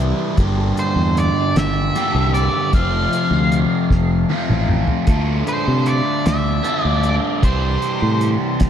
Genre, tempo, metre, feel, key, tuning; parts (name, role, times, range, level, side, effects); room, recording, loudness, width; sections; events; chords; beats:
psychedelic rock; 51 BPM (dotted quarters); 6/8; straight; D minor; A4 = 437 Hz
overdriven semi-hollow guitar; riff; 0.0-8.7 s; F2 to G4; -20 LUFS; equal; phaser
fingered electric bass; bass; 0.0-8.7 s; F1 to C3; -19 LUFS; equal
cloth-damped thuddy drum kit; drums; 0.4-8.7 s; hi-hat, kick drum, snare drum, toms; -21 LUFS; equal
octave-fuzz lead guitar; melody; 0.8-8.3 s; C5 to F5; -23 LUFS; equal; distortion, diffuse ambient delay
moderate plate reverb, RT60 3.4 s; dreamy mix soaked in reverb; -15 LUFS; side -9 dB against mid
0.0-8.7 A section
drum fill 3.9-5.1
0.4 Gm; 2.7 F; 5.1 Dm; 7.4 C
| 0.38 1.55 | 2.73 3.91 | 5.08 6.26 | 7.44 8.62